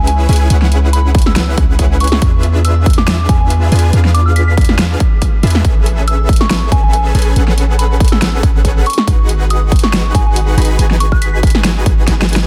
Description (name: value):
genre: future bass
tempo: 140 BPM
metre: 4/4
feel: swing 54% on 16ths, half-time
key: C# minor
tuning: A4 = 441 Hz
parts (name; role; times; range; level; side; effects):
- soft synth bell; melody; 0.0-11.4 s; G#5 to B6; -24 LUFS; equal; chorus, phaser, sidechain pumping, dub echo
- supersaw chords; riff; 0.0-12.5 s; C#4 to B5; -23 LUFS; equal; sidechain pumping
- warm 808-style bass; bass; 0.0-12.5 s; G#1 to E2; -15 LUFS; equal; sidechain pumping
- big-room dance drum kit; drums; 0.1-12.5 s; hi-hat, snare drum; -20 LUFS; equal; overdrive
- electronic kick drum; drums; 1.1-12.2 s; none; -14 LUFS; equal; overdrive
room: digital ambience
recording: dense, heavily limited modern master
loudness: -12 LUFS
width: mono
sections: 0.0-12.5 A section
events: drum fill 12.1-12.5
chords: 0.0 C#m7; 2.2 E7b9; 5.6 Amaj9; 8.9 G#m7